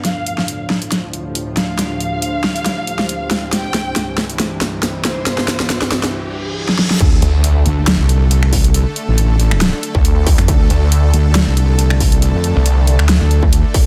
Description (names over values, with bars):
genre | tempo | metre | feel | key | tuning
heavy wobble dubstep | 138 BPM | 4/4 | swing 54% on 16ths, half-time | D minor | A4 = 440 Hz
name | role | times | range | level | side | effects
dark studio violin section | melody | 0.0-6.1 s | C5 to G5 | -28 LUFS | equal | low-pass filter, dub echo
supersaw pad | sustained chords | 0.0-13.9 s | C2 to A4 | -28 LUFS | equal | sidechain pumping, low-pass filter
dubstep drum kit | drums | 0.0-13.8 s | crash cymbal, finger snaps, hi-hat, snare drum | -20 LUFS | equal | small room ambience
riser, reverse cymbal and sub drop | sound effects | 4.1-8.7 s | none | -30 LUFS | equal | none
deep dark ambient pad | texture | 0.0-13.9 s | D4 to A5 | -32 LUFS | equal | chorus, built-in reverb, sidechain pumping
wobble bass | bass | 7.0-13.6 s | A1 to F2 | -15 LUFS | equal | chorus, overdrive
electronic kick drum | drums | 7.0-13.8 s | none | -16 LUFS | equal | distortion, small room ambience
snarling distorted saw bass | bass | 7.2-13.2 s | C2 to D2 | -14 LUFS | equal | distortion, overdrive
room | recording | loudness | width
light reverb, digital ambience | dense, heavily limited modern master | -15 LUFS | mono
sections
0.0-7.0 A section; 7.0-13.9 B section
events
build-up 0.0-7.0; drum fill 0.0-6.1, 6.7-7.0; filter sweep on supersaw synth 0.0-7.0; riser 4.1-7.0; reverse cymbal 6.1-7.0; drop 7.0-13.9; impact 7.0-8.7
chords
0.0 Dm; 3.5 C; 7.0 D5